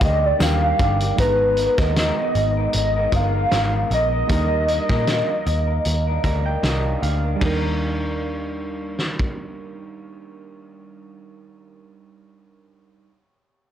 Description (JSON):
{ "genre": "indie pop, bedroom pop", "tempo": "77 BPM", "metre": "4/4", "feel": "swing 55% on 16ths", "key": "Eb major", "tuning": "A4 = 440 Hz", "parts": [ { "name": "hollow clarinet-like synth lead", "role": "melody", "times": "0.0-6.6 s", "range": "Cb5 to F5", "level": "-21 LUFS", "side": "equal", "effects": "ensemble chorus, slapback echo" }, { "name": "electric guitar through a small old amp", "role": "accompaniment", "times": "0.0-12.0 s", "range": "Ab2 to Bb4", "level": "-29 LUFS", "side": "left 4 dB", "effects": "lush chorus, warbly pitch drift" }, { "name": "warm analog keys", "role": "accompaniment", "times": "0.0-13.1 s", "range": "G3 to Bb5", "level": "-30 LUFS", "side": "right 6 dB", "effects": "chorus, cassette tape" }, { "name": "vintage muted picked electric bass", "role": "bass", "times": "0.0-11.8 s", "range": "G1 to Bb2", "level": "-22 LUFS", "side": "equal", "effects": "none" }, { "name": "loose indie drum kit", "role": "drums", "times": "0.0-9.4 s", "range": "hi-hat, kick drum, ride cymbal, snare drum", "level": "-25 LUFS", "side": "equal", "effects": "none" }, { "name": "tambourine", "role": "percussion", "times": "0.4-0.6 s", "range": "none", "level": "-36 LUFS", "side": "right 5 dB", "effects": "none" } ], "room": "light reverb", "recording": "blown-out, overdriven recording, overdrive", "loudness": "-18 LUFS", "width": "side -10 dB against mid", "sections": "0.0-1.2 A section; 1.2-7.4 B section; 7.4-10.5 C section", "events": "soft synth lead solo 0.0-1.2; synth keys fill 5.9-7.4", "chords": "0.0 Ebmaj7; 1.2 Abmadd9; 4.3 Ebmaj7", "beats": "0.40 | 1.18 1.96 2.74 3.52 | 4.30 5.08 5.86 6.64 | 7.42 8.20 8.98 9.76" }